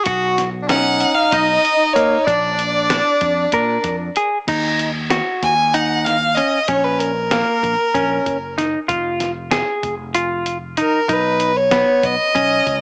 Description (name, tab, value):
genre	progressive instrumental, band music in an uneven meter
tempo	190 BPM (eighths)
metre	7/8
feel	straight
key	Eb minor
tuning	A4 = 439 Hz
part	edgy tenor saxophone	second line	0.0-4.2 s	D4 to F#4	-22 LUFS	equal	cassette tape
part	semi-hollow electric guitar	arpeggios	0.1-12.8 s	A#3 to Bb4	-23 LUFS	equal	subtle chorus, cassette tape, analog delay
part	fretless electric bass	bass	0.1-12.8 s	F1 to Bb2	-30 LUFS	equal	none
part	lo-fi sampler-style drum kit	drums	0.1-12.8 s	crash cymbal, hi-hat, kick drum, snare drum	-27 LUFS	equal	cassette tape
part	rich violin	melody	0.7-12.8 s	Bb4 to Ab5	-20 LUFS	equal	cassette tape
room	moderate spring reverb, RT60 1.9 s, digital ambience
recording	home recording on cassette, small speaker sound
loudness	-18 LUFS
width	mono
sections	0.0-4.5 A section; 4.5-12.8 B section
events	violin solo 4.5-12.8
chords	0.1 B; 2.3 Bb; 4.5 Ebm; 6.7 Bbm; 8.9 Fm; 11.1 Badd9